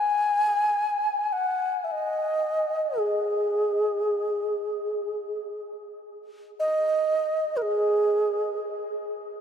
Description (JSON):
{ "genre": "world meditative, free-time meditation music", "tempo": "free time", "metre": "none", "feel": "none", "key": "unclear", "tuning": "A4 = 441 Hz", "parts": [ { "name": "low xiao", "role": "solo", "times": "0.0-8.6 s", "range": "G#4 to G#5", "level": "-24 LUFS", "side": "equal", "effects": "diffuse ambient delay" } ], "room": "wet huge ambient reverb, RT60 6.6 s", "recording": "dark, warm production", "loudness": "-23 LUFS", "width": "side -8 dB against mid", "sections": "0.0-8.8 A section", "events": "none", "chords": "none", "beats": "free time" }